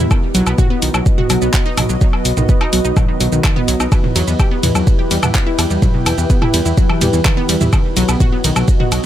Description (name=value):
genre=melodic techno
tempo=126 BPM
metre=4/4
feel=straight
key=E harmonic minor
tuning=A4 = 440 Hz
part: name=dark analog pad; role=sustained chords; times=0.0-9.1 s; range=B3 to D#5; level=-24 LUFS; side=right 1 dB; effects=chorus, phaser, sidechain pumping
part: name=wide unison pluck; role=arpeggios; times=0.0-9.0 s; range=B2 to G4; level=-20 LUFS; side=equal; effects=cassette tape, sidechain pumping, tape echo
part: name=fat analog bass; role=bass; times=0.0-9.0 s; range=B1 to E2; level=-18 LUFS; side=equal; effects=sidechain pumping
part: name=warbly tape-like pad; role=texture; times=0.0-9.1 s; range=B3 to G5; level=-26 LUFS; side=equal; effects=chorus, built-in reverb, sidechain pumping
part: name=deep house drum kit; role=drums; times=0.1-9.0 s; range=handclaps, hi-hat, ride cymbal, shaker, toms, woodblock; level=-19 LUFS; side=right 1 dB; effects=sidechain pumping on cymbals, sidechain pumping on perc, sidechain pumping on toms, sidechain pumping on hats
part: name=electronic kick drum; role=drums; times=0.1-8.8 s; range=none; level=-14 LUFS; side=equal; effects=none
room=little or no reverb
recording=none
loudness=-12 LUFS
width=side -12 dB against mid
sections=0.0-9.1 A section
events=none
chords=0.1 B; 3.9 Em; 7.7 B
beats=| 0.11 0.58 1.06 1.54 | 2.01 2.49 2.97 3.44 | 3.92 4.39 4.87 5.35 | 5.82 6.30 6.78 7.25 | 7.73 8.20 8.68